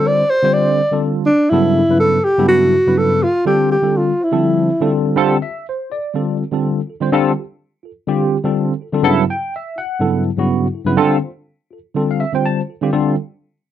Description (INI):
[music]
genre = jazz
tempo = 124 BPM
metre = 4/4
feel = swing 54% on 16ths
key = unclear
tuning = A4 = 442 Hz
[part]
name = breathy alto saxophone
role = melody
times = 0.0-4.9 s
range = D4 to D5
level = -14 LUFS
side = equal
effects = none
[part]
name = tine electric piano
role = accompaniment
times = 0.0-13.1 s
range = G2 to A5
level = -16 LUFS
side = equal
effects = slow stereo tremolo, analog chorus
[sound]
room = light reverb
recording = dry, close 1970s-style studio recording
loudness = -14 LUFS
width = side -11 dB against mid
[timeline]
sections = 0.0-5.2 A section; 5.2-12.9 B section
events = none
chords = 0.0 Bbmaj13/D (rootless); 1.3 Gmaj9; 3.2 Dm11; 9.1 Gmaj9; 11.0 Dm11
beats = 0.30 0.79 | 1.28 1.76 2.25 2.74 | 3.23 3.71 4.20 4.69 | 5.17 5.66 6.14 6.63 | 7.11 7.60 8.08 8.57 | 9.05 9.53 10.02 10.50 | 10.98 11.47 11.95 12.43 | 12.91